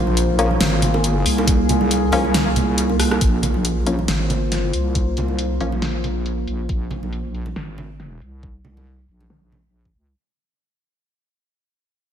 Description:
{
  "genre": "deep dubstep",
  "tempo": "138 BPM",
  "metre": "4/4",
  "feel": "swing 54% on 16ths, half-time",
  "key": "unclear",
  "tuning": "A4 = 440 Hz",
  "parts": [
    { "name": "deep dark ambient pad", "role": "sustained chords", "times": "0.0-10.1 s", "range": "Bb3 to C5", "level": "-23 LUFS", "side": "equal", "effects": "chorus, built-in reverb" },
    { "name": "wobble bass", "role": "bass", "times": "0.0-10.2 s", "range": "Ab1 to Db2", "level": "-22 LUFS", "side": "equal", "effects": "chorus" },
    { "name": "congas and bongos", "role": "percussion", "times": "0.1-9.6 s", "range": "none", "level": "-28 LUFS", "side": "right 3 dB", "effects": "dub echo" },
    { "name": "deep house drum kit", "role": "drums", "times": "0.2-10.0 s", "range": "hi-hat, rim click, snare drum", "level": "-23 LUFS", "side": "equal", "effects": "low-pass filter on hats, low-pass filter on snare, low-pass filter on room" },
    { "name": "filtered dub chord stab", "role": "stabs", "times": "0.4-5.7 s", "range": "F3 to Db4", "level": "-26 LUFS", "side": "left 3 dB", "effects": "chorus, dub echo" },
    { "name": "electronic kick drum", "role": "drums", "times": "1.5-9.9 s", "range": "none", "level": "-19 LUFS", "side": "equal", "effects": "none" }
  ],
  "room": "moderate lush hall reverb, RT60 1.9 s",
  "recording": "dreamy mix soaked in reverb",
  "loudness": "-17 LUFS",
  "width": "side -9 dB against mid",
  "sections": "0.0-3.2 A section; 3.2-10.2 B section",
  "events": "drop 0.0-3.2; kick drops out 2.3-3.2; drum fill 3.0; fade-out 3.2-10.2; filter sweep on drum 3.2-10.2",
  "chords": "0.0 Bb5"
}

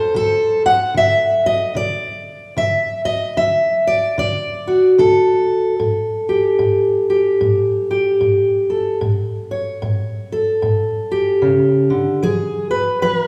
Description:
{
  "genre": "acoustic country blues, solo or duo",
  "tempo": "74 BPM",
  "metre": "4/4",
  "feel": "swing 60% on 8ths",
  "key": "A mixolydian",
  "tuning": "A4 = 440 Hz",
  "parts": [
    { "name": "fingerpicked steel-string acoustic guitar", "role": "solo", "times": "0.0-13.3 s", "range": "A2 to F#5", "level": "-17 LUFS", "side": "equal", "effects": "none" }
  ],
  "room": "wet recital hall reverb, RT60 1.6 s",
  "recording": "recorded in a church or concert hall, small room reverb",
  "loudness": "-17 LUFS",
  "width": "mono",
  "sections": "0.0-13.3 A section",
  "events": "none",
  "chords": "0.0 D7; 5.8 A7; 12.2 N.C."
}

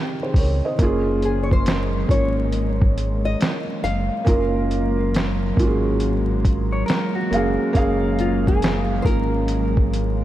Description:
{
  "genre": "lo-fi hip hop",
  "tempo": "69 BPM",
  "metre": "4/4",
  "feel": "swing 66% on 16ths",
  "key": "Gb lydian",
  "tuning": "A4 = 440 Hz",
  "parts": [
    { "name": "felt-muted upright piano", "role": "accompaniment", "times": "0.0-10.2 s", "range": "Bb3 to F5", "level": "-23 LUFS", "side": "right 2 dB", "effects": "cassette tape" },
    { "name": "warbly tape-like pad", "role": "sustained chords", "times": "0.0-10.2 s", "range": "Db3 to Eb4", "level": "-28 LUFS", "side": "equal", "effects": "chorus, built-in reverb" },
    { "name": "sub bass with octave", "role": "bass", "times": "0.3-10.2 s", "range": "Gb1 to Db2", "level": "-24 LUFS", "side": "equal", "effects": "none" },
    { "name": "lo-fi sampler-style drum kit", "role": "drums", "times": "0.3-10.2 s", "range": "hi-hat, kick drum, snare drum", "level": "-22 LUFS", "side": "equal", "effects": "overdrive" },
    { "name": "nylon-string guitar", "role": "melody", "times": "1.2-10.2 s", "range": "F4 to F5", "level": "-28 LUFS", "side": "left 2 dB", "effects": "analog chorus, diffuse ambient delay" },
    { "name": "electric guitar through a small old amp", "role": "second line", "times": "6.7-8.4 s", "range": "Gb4 to Db5", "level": "-31 LUFS", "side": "left 1 dB", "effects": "diffuse ambient delay" }
  ],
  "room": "moderate cathedral reverb, RT60 6.6 s",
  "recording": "dreamy mix soaked in reverb, vinyl crackle",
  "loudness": "-18 LUFS",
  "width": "side -13 dB against mid",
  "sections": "0.0-10.2 A section",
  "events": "none",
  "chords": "0.0 Dbmaj9; 0.8 Gbmaj9"
}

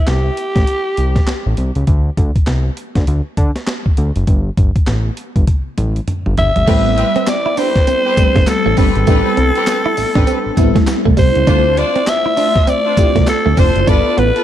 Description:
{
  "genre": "R&B, new jack swing",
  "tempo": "100 BPM",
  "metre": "4/4",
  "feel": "swing 61% on 16ths",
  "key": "A minor",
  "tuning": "A4 = 439 Hz",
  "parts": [
    { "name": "raspy alto saxophone", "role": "melody", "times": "0.0-1.5, 6.4-14.4 s", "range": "G4 to E5", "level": "-16 LUFS", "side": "left 1 dB", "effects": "none" },
    { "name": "fat analog bass", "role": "bass", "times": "0.1-14.3 s", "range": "F1 to D3", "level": "-16 LUFS", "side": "equal", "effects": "none" },
    { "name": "boom bap sampler-style drum kit", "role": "drums", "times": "0.1-14.4 s", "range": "crash cymbal, handclaps, hi-hat, kick drum, snare drum, tambourine, toms", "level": "-16 LUFS", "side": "equal", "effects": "none" },
    { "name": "FM electric piano with soft pad layer", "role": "accompaniment", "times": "6.7-14.4 s", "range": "G3 to A4", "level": "-20 LUFS", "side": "left 1 dB", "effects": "chorus, phaser" },
    { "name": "direct-recorded clean electric guitar", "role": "riff", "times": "6.7-14.3 s", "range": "G3 to E4", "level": "-20 LUFS", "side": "right 5 dB", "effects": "lush chorus" },
    { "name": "rich studio string section", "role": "stabs", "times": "6.7-14.4 s", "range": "C4 to C5", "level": "-23 LUFS", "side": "left 2 dB", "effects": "none" },
    { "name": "group handclap", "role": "percussion", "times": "7.3-13.4 s", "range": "none", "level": "-35 LUFS", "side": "left 2 dB", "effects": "none" }
  ],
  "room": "light reverb, digital ambience",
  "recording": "dark, warm production",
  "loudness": "-12 LUFS",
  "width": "side -11 dB against mid",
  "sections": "0.0-6.7 A section; 6.7-14.4 B section",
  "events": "drum fill 5.5-6.7",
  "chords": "0.0 Am7; 1.9 D7(no3); 4.3 Gsus2; 6.7 Am9; 11.5 Dm7; 13.9 G9"
}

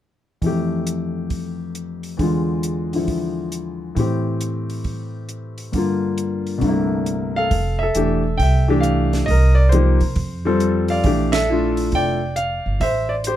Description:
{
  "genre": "jazz piano trio",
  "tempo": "136 BPM",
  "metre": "4/4",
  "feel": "swing 65% on 8ths",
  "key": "F major",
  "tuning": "A4 = 438 Hz",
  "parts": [
    { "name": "warm grand piano", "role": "melody", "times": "0.4-13.4 s", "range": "C2 to G5", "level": "-20 LUFS", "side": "left 1 dB", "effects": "none" },
    { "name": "compact cocktail drum kit", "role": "drums", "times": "0.4-13.4 s", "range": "hi-hat, kick drum, ride cymbal, snare drum", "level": "-26 LUFS", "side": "right 2 dB", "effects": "none" },
    { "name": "upright bass", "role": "bass", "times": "7.5-13.4 s", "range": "E1 to C3", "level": "-19 LUFS", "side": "right 1 dB", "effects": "none" }
  ],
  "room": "light reverb",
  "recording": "dark, warm production",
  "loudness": "-17 LUFS",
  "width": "side -12 dB against mid",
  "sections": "0.4-7.5 A section; 7.5-13.4 B section",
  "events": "band accent 11.3",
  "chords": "0.4 Fmaj9; 2.2 E7b9; 4.0 Am7; 5.7 Gm7; 6.6 C13; 7.5 Fmaj7; 9.3 Cm7; 10.2 F; 11.0 Bbmaj7; 12.8 Am"
}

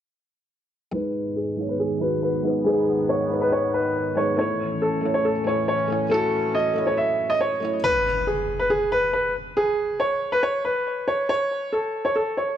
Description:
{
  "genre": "hip hop",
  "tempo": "139 BPM",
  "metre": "4/4",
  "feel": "half-time",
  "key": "G# phrygian",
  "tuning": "A4 = 440 Hz",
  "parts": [
    { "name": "dark concert grand piano", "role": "melody", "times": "0.9-12.6 s", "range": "G#4 to E5", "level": "-22 LUFS", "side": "equal", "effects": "low-pass filter, ping-pong delay" },
    { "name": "felt-muted upright piano", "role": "accompaniment", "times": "0.9-7.9 s", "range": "G#3 to C#5", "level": "-26 LUFS", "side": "equal", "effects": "low-pass filter" },
    { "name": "sweeping resonant pad", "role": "sustained chords", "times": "0.9-7.8 s", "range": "G#2 to C#4", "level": "-30 LUFS", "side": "right 1 dB", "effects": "chorus, low-pass filter" },
    { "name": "impact", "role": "sound effects", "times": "7.8-9.6 s", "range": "none", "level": "-35 LUFS", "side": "equal", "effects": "none" }
  ],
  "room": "light reverb, studio reverb",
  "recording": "none",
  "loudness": "-21 LUFS",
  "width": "side -10 dB against mid",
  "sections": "0.9-7.8 A section; 7.8-12.6 B section",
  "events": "filter sweep 0.9-7.8; impact 7.8-9.6",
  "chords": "0.9 G#m; 4.4 A; 7.8 N.C."
}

